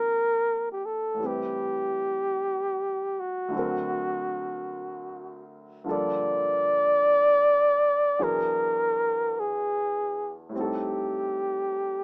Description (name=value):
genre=jazz ballad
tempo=51 BPM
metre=4/4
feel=swing 66% on 8ths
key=unclear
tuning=A4 = 438 Hz
part: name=breathy flugelhorn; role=melody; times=0.0-12.0 s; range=F#4 to D5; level=-27 LUFS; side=equal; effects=none
part: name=warm grand piano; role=accompaniment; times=0.0-12.0 s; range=D2 to B4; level=-37 LUFS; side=equal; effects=none
room=light reverb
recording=rough home demo mix, small speaker sound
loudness=-26 LUFS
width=mono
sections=0.0-12.0 A section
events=none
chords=0.0 Ebmaj9; 1.2 Am9; 3.5 D7b13; 5.9 Gm9; 8.2 E7; 10.5 Am7b5